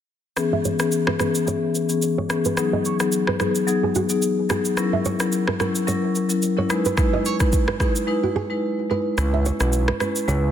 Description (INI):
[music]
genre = afrobeats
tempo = 109 BPM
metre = 4/4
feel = swing 55% on 16ths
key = C# dorian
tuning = A4 = 440 Hz
[part]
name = marimba with medium mallets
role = accompaniment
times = 0.4-10.5 s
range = E3 to B4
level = -22 LUFS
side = left 3 dB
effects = low-pass filter
[part]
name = deep house drum kit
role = drums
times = 0.4-10.4 s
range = kick drum, rim click, shaker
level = -25 LUFS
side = equal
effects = none
[part]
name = nylon-string guitar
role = riff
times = 0.5-10.5 s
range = F#4 to E5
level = -27 LUFS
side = right 5 dB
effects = low-pass filter, ping-pong delay
[part]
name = fat analog bass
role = bass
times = 9.2-10.5 s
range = B1 to C#2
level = -21 LUFS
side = equal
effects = none
[sound]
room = light reverb, small room ambience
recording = dense, heavily limited modern master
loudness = -19 LUFS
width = side -9 dB against mid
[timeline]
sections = 0.4-9.2 A section; 9.2-10.5 B section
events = filter sweep 0.4-9.2; break 8.1-9.2; kick muted 9.2-10.5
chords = 0.4 C#m7; 2.6 G#m7; 4.8 F#7; 6.7 Emaj7; 9.2 C#m7